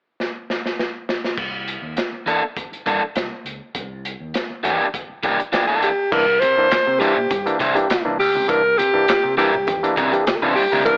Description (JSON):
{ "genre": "funk", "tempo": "101 BPM", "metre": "4/4", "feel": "straight", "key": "C mixolydian", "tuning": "A4 = 444 Hz", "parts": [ { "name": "crunchy breakbeat drum kit", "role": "drums", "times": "0.2-11.0 s", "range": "crash cymbal, handclaps, hi-hat, kick drum, snare drum", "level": "-27 LUFS", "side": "equal", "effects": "none" }, { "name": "fingered electric bass", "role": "bass", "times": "1.4-11.0 s", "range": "C2 to C3", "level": "-35 LUFS", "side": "equal", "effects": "none" }, { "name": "crunchy overdriven guitar", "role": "accompaniment", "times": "2.3-10.8 s", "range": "E3 to C5", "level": "-23 LUFS", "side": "equal", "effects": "plate reverb" }, { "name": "breathy alto saxophone", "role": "melody", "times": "5.8-11.0 s", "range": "G4 to C5", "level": "-20 LUFS", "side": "equal", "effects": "analog delay" }, { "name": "overdriven clav", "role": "stabs", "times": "6.1-11.0 s", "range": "C3 to D4", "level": "-26 LUFS", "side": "equal", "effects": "plate reverb" }, { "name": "congas", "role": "percussion", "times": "6.1-11.0 s", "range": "none", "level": "-36 LUFS", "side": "equal", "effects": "none" }, { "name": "dark trombone", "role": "second line", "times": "7.3-10.4 s", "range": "G4", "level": "-26 LUFS", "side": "equal", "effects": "none" } ], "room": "moderate studio ambience, RT60 0.5 s", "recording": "AM radio sound", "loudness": "-20 LUFS", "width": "mono", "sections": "0.0-1.4 A section; 1.4-6.1 B section; 6.1-11.0 C section", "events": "drum fill 0.2-1.4", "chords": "0.0 N.C.; 1.4 C9" }